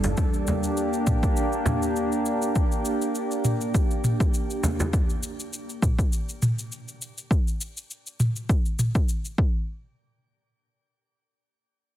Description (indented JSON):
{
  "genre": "organic downtempo",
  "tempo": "101 BPM",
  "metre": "4/4",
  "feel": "swing 54% on 16ths",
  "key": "unclear",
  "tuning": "A4 = 436 Hz",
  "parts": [
    { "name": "warbly tape-like pad", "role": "sustained chords", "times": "0.0-4.9 s", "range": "G3 to A4", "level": "-27 LUFS", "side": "right 1 dB", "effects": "chorus, built-in reverb, sidechain pumping, shimmer reverb" },
    { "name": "afro-pop drum kit", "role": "drums", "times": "0.0-9.4 s", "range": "hi-hat, shaker, toms", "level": "-27 LUFS", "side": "equal", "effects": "none" },
    { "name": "frame drum", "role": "percussion", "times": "0.0-4.9 s", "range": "none", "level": "-28 LUFS", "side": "equal", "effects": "none" },
    { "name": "electronic kick drum", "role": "drums", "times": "0.2-9.5 s", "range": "none", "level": "-23 LUFS", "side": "equal", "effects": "overdrive" }
  ],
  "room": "moderate lush hall reverb, RT60 1.8 s, digital ambience",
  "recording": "heavily compressed radio sound, multiband compression",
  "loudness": "-22 LUFS",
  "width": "side -12 dB against mid",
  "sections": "0.0-9.7 A section; 9.7-12.0 B section",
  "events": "none",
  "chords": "0.2 Bb6; 4.9 N.C.",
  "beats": "| 0.18 0.77 1.36 1.96 | 2.55 3.15 3.74 4.33 | 4.93 5.52 6.12 6.71 | 7.30 7.90 8.49 9.09"
}